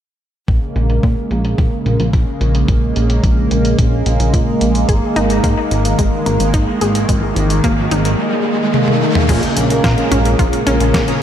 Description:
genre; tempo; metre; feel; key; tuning
synthwave; 109 BPM; 4/4; straight; Bb minor; A4 = 439 Hz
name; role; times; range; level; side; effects
warm analog pad; sustained chords; 0.5-11.2 s; Db3 to Bb3; -18 LUFS; right 1 dB; chorus, sidechain pumping
chorused synth bass; bass; 0.5-11.1 s; Ab1 to Bb2; -16 LUFS; equal; none
detuned 8-bit digital drum machine; drums; 0.5-11.2 s; crash cymbal, hi-hat, snare drum, toms; -22 LUFS; left 1 dB; overdrive, low-pass filter on hats, low-pass filter on toms, low-pass filter on cymbals, low-pass filter on snare, low-pass filter on room
electronic kick drum; drums; 0.5-11.1 s; none; -16 LUFS; equal; overdrive
wide unison pluck; arpeggios; 4.9-11.1 s; Ab3 to Ab4; -21 LUFS; left 2 dB; digital delay, slapback echo
riser; sound effects; 6.7-9.3 s; none; -22 LUFS; equal; none
analog synth brass; stabs; 9.3-11.2 s; Bb2 to Bb4; -20 LUFS; right 2 dB; chorus, digital delay, slapback echo
room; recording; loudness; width
moderate lush hall reverb, RT60 2.8 s; big arena sound; -12 LUFS; side -10 dB against mid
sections
0.5-9.3 A section; 9.3-11.2 B section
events
filter sweep on drum 0.5-9.3; filter sweep on analog synth bass 0.5-9.3; riser 6.7-9.3; drum fill 8.7-9.3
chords
0.5 Bbm7; 4.9 Absus2; 9.3 Bbm7

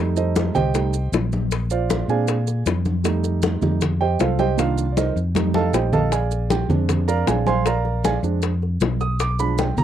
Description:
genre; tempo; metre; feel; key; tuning
Afro-Cuban jazz; 156 BPM; 4/4; straight; unclear; A4 = 441 Hz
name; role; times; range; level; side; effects
warm grand piano; accompaniment; 0.0-9.8 s; Eb3 to Eb6; -22 LUFS; right 7 dB; none
fingered electric bass; bass; 0.0-9.8 s; Bb1 to B2; -22 LUFS; left 1 dB; none
bongos; percussion; 0.2-9.8 s; none; -27 LUFS; left 9 dB; none
congas; percussion; 0.2-9.8 s; none; -26 LUFS; left 2 dB; none
maracas; percussion; 0.2-9.8 s; none; -36 LUFS; right 13 dB; none
room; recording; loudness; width
light reverb; dry, close 1970s-style studio recording; -18 LUFS; side -10 dB against mid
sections
0.0-9.8 A section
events
grand piano solo 0.0-9.8; drum fill 5.4-6.1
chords
0.0 F9; 1.5 Bb9; 3.0 F9; 4.6 Cm7; 5.4 F9; 6.1 Bb9; 9.2 Bdim7

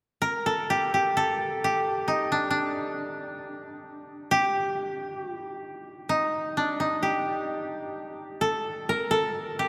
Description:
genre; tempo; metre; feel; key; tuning
japanese traditional; 66 BPM; 2/4; uneven beats, rubato; G hirajoshi; A4 = 440 Hz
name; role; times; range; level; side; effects
koto; melody; 0.2-9.7 s; D4 to Bb4; -28 LUFS; equal; none
room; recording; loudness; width
wet cathedral reverb, RT60 5.4 s; in a vast, echoing space; -27 LUFS; mono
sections
0.7-9.7 A section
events
none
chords
none

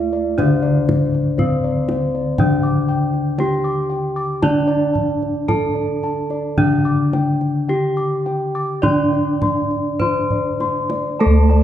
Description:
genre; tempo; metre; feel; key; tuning
Javanese gamelan; 49-60 BPM; 4/4; straight; D slendro; A4 = 439 Hz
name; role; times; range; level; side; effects
gamelan-type bronze metallophone; melody; 0.0-11.6 s; C4-25c to D5; -22 LUFS; left 1 dB; none
gamelan-type bronze metallophone; accompaniment; 0.0-11.6 s; D3 to D4; -20 LUFS; equal; none
gamelan-type bossed gongs; arpeggios; 0.0-11.6 s; C5-25c to D6; -24 LUFS; left 2 dB; none
gamelan-type bossed gongs; bass; 0.0-11.6 s; D2 to A4; -24 LUFS; equal; none
kendang; percussion; 0.4-11.6 s; none; -25 LUFS; right 1 dB; none
gamelan-type bronze metallophone; arpeggios; 11.2-11.6 s; A5; -26 LUFS; right 5 dB; none
room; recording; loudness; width
wet recital hall reverb, RT60 1.8 s; heard from further back in the room, nothing above 10.4 kHz; -16 LUFS; side -11 dB against mid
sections
0.0-11.2 A section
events
drum fill 10.3-11.2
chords
none

